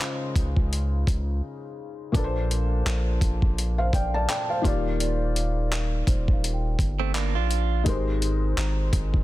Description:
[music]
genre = contemporary R&B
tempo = 84 BPM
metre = 4/4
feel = swing 58% on 16ths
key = unclear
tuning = A4 = 439 Hz
[part]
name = felt-muted upright piano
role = accompaniment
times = 0.0-9.2 s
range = Ab2 to A5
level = -29 LUFS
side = left 2 dB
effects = none
[part]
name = dusty soul sampler-style drum kit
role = drums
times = 0.0-9.2 s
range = handclaps, hi-hat, kick drum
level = -25 LUFS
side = equal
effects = soft clipping on snare
[part]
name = long sustained 808-style bass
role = bass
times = 0.4-9.2 s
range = Eb1 to Db2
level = -25 LUFS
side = equal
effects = none
[part]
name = celesta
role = texture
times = 5.0-9.2 s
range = C5 to Bb5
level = -39 LUFS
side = right 4 dB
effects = digital delay
[part]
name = direct-recorded clean electric guitar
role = arpeggios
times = 7.0-7.8 s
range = A3 to F4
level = -29 LUFS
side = right 16 dB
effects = none
[sound]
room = little or no reverb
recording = dense, heavily limited modern master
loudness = -22 LUFS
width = side -16 dB against mid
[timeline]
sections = 0.0-9.2 A section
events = break 1.4-2.1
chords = 0.0 Dbmaj9; 2.1 Bbmaj9; 4.6 Ebmaj9; 7.9 Abmaj9

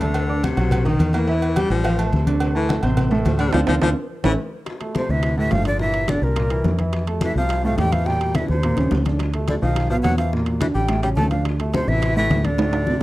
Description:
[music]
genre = Afro-Cuban jazz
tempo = 212 BPM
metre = 4/4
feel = straight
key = D minor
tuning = A4 = 436 Hz
[part]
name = clear baritone saxophone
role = second line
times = 0.0-13.0 s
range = Bb2 to A3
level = -26 LUFS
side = left 4 dB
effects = none
[part]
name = warm grand piano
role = accompaniment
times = 0.0-13.0 s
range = A2 to D6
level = -24 LUFS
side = right 2 dB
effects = none
[part]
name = fingered electric bass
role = bass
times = 0.0-13.0 s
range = G1 to F2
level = -22 LUFS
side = equal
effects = none
[part]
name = agogo bells and timbales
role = percussion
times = 0.0-13.0 s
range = none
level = -29 LUFS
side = right 5 dB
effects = none
[part]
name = congas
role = percussion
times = 0.0-12.9 s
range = none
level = -27 LUFS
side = left 2 dB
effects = none
[part]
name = cowbell and bongos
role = percussion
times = 0.2-13.0 s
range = none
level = -32 LUFS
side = left 4 dB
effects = none
[part]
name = breathy jazz flute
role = melody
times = 5.0-13.0 s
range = Bb4 to A5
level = -24 LUFS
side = right 1 dB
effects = none
[sound]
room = studio reverb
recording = dry, close 1970s-style studio recording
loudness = -18 LUFS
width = side -17 dB against mid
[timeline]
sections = 0.0-4.7 A section; 4.7-13.0 B section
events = baritone saxophone solo 0.0-4.7; band accent 3.5-4.7; drum fill 4.1-4.7, 8.3-9.2, 12.6-13.0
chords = 0.1 D5; 0.7 B; 1.3 Fmaj9; 1.8 F6/A; 2.4 Dm7; 4.1 A; 4.7 Dm9; 5.8 Gm; 6.4 C7; 6.9 Fmaj7; 8.1 Em7b5; 8.6 Eb5; 9.2 D5; 9.8 B; 10.3 Gm69; 10.9 Aaug7; 11.5 Dsus2

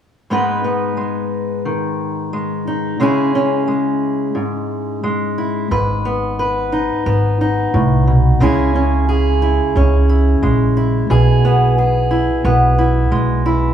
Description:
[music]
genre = folk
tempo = 89 BPM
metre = 4/4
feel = straight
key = unclear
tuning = A4 = 440 Hz
[part]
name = fingerpicked steel-string acoustic guitar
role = accompaniment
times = 0.3-13.7 s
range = G#2 to B4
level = -16 LUFS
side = equal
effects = none
[part]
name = upright bass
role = bass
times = 5.7-13.7 s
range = G#1 to C#2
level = -16 LUFS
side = right 1 dB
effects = none
[sound]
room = moderate large studio reverb, RT60 1.4 s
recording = band playing live in one room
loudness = -14 LUFS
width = side -9 dB against mid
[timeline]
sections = 0.3-5.7 A section; 5.7-13.7 B section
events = none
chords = 0.3 G#m; 3.0 C#m; 5.7 G#m; 8.4 C#m; 11.1 E/B

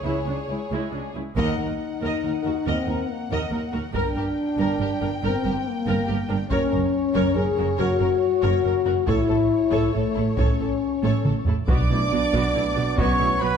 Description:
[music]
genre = cinematic, epic orchestral film score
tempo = 140 BPM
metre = 3/4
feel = straight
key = unclear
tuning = A4 = 440 Hz
[part]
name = dark studio violin section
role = melody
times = 0.0-13.6 s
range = C#5 to D6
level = -33 LUFS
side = left 2 dB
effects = none
[part]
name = warm symphonic violin section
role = second line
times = 0.0-13.6 s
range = D4 to D#5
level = -33 LUFS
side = left 2 dB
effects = none
[part]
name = rich symphonic viola section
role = accompaniment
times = 0.0-13.5 s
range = G#3 to A#4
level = -32 LUFS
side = right 2 dB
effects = none
[part]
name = rich studio double bass section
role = bass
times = 0.0-13.5 s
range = F#1 to D#2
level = -29 LUFS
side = right 4 dB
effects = none
[part]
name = rich symphonic cello section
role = bass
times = 0.1-13.5 s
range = C#2 to B2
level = -28 LUFS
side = right 3 dB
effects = none
[part]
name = dark French horn section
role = sustained chords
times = 1.4-13.6 s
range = A3 to G#4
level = -24 LUFS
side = left 5 dB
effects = none
[part]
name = taiko ensemble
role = drums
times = 1.4-13.4 s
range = none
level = -26 LUFS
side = equal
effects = none
[part]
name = bright trombone section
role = sustained chords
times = 11.7-13.6 s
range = F#3 to B3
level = -31 LUFS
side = right 6 dB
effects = none
[part]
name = warm trumpet section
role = stabs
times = 11.7-13.6 s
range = B4 to D5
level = -26 LUFS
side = right 4 dB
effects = none
[part]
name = timpani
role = percussion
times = 11.7-12.3 s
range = B2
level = -30 LUFS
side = left 2 dB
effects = none
[sound]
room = moderate scoring stage reverb, RT60 1.6 s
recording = none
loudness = -20 LUFS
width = side -7 dB against mid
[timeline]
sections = 0.0-1.4 A section; 1.4-11.7 B section; 11.7-13.6 A section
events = band accent 1.4-1.8; drum fill 11.0-11.7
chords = 0.0 C#m; 1.4 D#m; 3.9 Gm; 6.5 F#; 9.1 A; 11.7 Bm

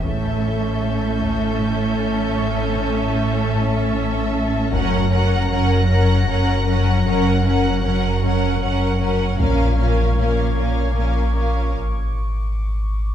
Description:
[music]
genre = cinematic, suspense film score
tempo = 77 BPM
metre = 3/4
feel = straight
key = unclear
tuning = A4 = 440 Hz
[part]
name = warm studio viola section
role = accompaniment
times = 0.0-11.7 s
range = C#4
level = -26 LUFS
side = right 2 dB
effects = none
[part]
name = concert harp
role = riff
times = 0.0-11.8 s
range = F#2 to A#3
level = -26 LUFS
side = left 6 dB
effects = none
[part]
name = warm studio double bass section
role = bass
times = 0.0-11.6 s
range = F#1 to A#1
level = -25 LUFS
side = right 2 dB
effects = none
[part]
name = pure sine sub bass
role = drone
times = 0.0-13.1 s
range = F#1 to A#1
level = -24 LUFS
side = equal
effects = none
[part]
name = taiko ensemble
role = drums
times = 0.0-10.9 s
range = none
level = -28 LUFS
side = equal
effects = none
[part]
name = rich studio violin section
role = texture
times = 0.0-13.1 s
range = C#6 to A#6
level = -33 LUFS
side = equal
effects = none
[part]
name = warm symphonic violin section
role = melody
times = 0.1-11.7 s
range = E5 to F#5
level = -28 LUFS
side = left 2 dB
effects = none
[part]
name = warm studio violin section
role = second line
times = 0.1-11.7 s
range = A4 to A#4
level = -27 LUFS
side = left 2 dB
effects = none
[part]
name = rich studio cello section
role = bass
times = 0.1-11.6 s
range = F#2 to A#2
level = -24 LUFS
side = right 2 dB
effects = none
[sound]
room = moderate scoring stage reverb, RT60 1.5 s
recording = minimal, uncompressed stereo recording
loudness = -17 LUFS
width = side -10 dB against mid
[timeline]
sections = 0.0-13.1 A section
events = break 11.7-13.1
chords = 0.0 A; 4.7 F#; 9.4 A#m; 11.7 G#sus4

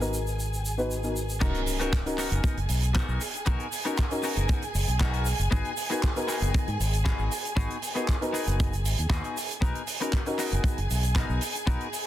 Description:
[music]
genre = nu-disco, nu disco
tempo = 117 BPM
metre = 4/4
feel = straight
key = B major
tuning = A4 = 443 Hz
[part]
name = dark baby grand piano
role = accompaniment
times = 0.0-10.4 s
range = B3 to B4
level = -32 LUFS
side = left 2 dB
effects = tape echo
[part]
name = warm studio string section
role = sustained chords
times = 0.0-12.1 s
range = G#4 to G#5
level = -36 LUFS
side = right 1 dB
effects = sidechain pumping
[part]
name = fingered electric bass with an envelope filter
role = bass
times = 0.0-11.8 s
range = F#1 to G#2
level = -28 LUFS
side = equal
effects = none
[part]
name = tight funk drum kit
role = drums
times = 0.0-12.0 s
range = crash cymbal, handclaps, hi-hat, shaker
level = -35 LUFS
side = right 3 dB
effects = soft clipping on snare
[part]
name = clean electric guitar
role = riff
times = 1.4-11.9 s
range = B3 to A#4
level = -34 LUFS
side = left 3 dB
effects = lush chorus, tape echo
[part]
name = kick drum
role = drums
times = 1.4-11.8 s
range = none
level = -27 LUFS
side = equal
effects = none
[part]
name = tube shaker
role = percussion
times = 1.4-12.0 s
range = none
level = -44 LUFS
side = right 7 dB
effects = none
[part]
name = impact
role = sound effects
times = 1.4-3.5 s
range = none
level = -35 LUFS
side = equal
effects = none
[sound]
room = light reverb, studio reverb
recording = dense, heavily limited modern master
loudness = -25 LUFS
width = side -13 dB against mid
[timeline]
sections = 0.0-1.4 A section; 1.4-12.1 B section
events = filter sweep on grand piano 0.0-1.4; drop 1.4-12.1; impact 1.4-3.5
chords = 0.0 G#m7; 1.4 Bmaj7; 5.5 G#m7; 9.6 Bmaj7

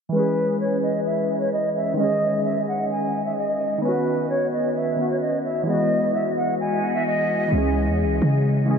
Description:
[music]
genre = hip hop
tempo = 130 BPM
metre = 4/4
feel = half-time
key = C# minor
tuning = A4 = 436 Hz
[part]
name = concert flute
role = melody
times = 0.1-7.5 s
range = B4 to G#5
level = -23 LUFS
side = right 1 dB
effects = diffuse ambient delay
[part]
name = warbly lo-fi synth keys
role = accompaniment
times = 0.1-8.8 s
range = D#3 to G#4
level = -24 LUFS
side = left 1 dB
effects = chorus, low-pass filter
[part]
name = warm 808-style bass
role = bass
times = 7.5-8.8 s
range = C#2 to C#3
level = -20 LUFS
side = equal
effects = none
[sound]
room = wet huge ambient reverb, RT60 8.5 s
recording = dreamy mix soaked in reverb, low-pass filter, nothing above 10.7 kHz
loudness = -20 LUFS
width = side -6 dB against mid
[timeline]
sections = 0.1-7.5 A section; 7.5-8.8 B section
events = filter sweep 0.1-7.5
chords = 0.1 C#m; 2.0 G#sus4; 3.8 Badd9; 5.7 Eadd9; 7.5 C#m

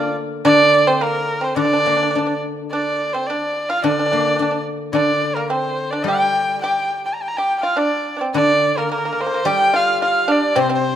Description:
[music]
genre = chinese traditional, Chinese chamber ensemble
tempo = 108 BPM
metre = 2/4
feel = rubato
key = unclear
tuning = A4 = 441 Hz
[part]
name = clear erhu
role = melody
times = 0.0-11.0 s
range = Bb4 to Bb5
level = -18 LUFS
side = right 1 dB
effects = none
[part]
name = pipa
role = second line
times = 0.0-11.0 s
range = Bb3 to G4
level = -22 LUFS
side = right 2 dB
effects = none
[part]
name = guzheng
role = accompaniment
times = 0.0-11.0 s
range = C3 to D4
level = -23 LUFS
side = left 4 dB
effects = none
[sound]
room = moderate recital hall reverb, RT60 1.5 s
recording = none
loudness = -16 LUFS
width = side -10 dB against mid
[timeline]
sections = 0.0-7.2 A section; 7.2-11.0 B section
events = none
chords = none

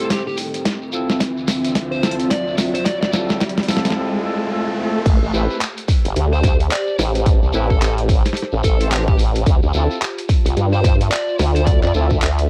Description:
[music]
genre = glitch hop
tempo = 109 BPM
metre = 4/4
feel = swing 60% on 16ths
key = A minor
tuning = A4 = 440 Hz
[part]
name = dark smooth lead guitar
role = melody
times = 0.0-11.9 s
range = G4 to D5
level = -29 LUFS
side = equal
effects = overdrive, cassette tape, tape echo
[part]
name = dark analog pad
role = sustained chords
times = 0.0-3.9 s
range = D3 to E5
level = -31 LUFS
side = equal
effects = chorus, sidechain pumping, cassette tape
[part]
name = warm horn section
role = stabs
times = 0.0-12.1 s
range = C4 to C5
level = -28 LUFS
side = equal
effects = vintage 12-bit sampler grit, sidechain pumping, cassette tape, tape echo
[part]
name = riser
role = sound effects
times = 0.3-5.1 s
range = none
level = -29 LUFS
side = equal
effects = none
[part]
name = warbly tape-like pad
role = texture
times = 0.0-12.5 s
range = C4 to C6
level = -30 LUFS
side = equal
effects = chorus, built-in reverb, phaser, sidechain pumping, cassette tape
[part]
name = boom bap sampler-style drum kit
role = drums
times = 0.1-12.5 s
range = crash cymbal, handclaps, hi-hat, snare drum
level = -24 LUFS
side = equal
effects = cassette tape
[part]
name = electronic kick drum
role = drums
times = 0.1-12.2 s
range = none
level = -18 LUFS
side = equal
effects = high-pass filter on kick, cassette tape, high-pass filter on room
[part]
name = shekere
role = percussion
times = 0.1-12.5 s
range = none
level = -34 LUFS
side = equal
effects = none
[part]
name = formant-sweep wobble bass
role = bass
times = 5.1-12.5 s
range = G1 to G2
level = -20 LUFS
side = equal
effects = chorus, tube saturation
[sound]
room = light reverb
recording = home recording on cassette, vinyl crackle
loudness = -18 LUFS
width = mono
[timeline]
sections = 0.0-5.1 A section; 5.1-12.5 B section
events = build-up 0.0-5.1; drum fill 0.0-4.0; riser 0.3-5.1; drop 5.1-12.5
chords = 0.0 Am7; 0.7 Dm9; 5.1 Am7; 9.5 Dm9

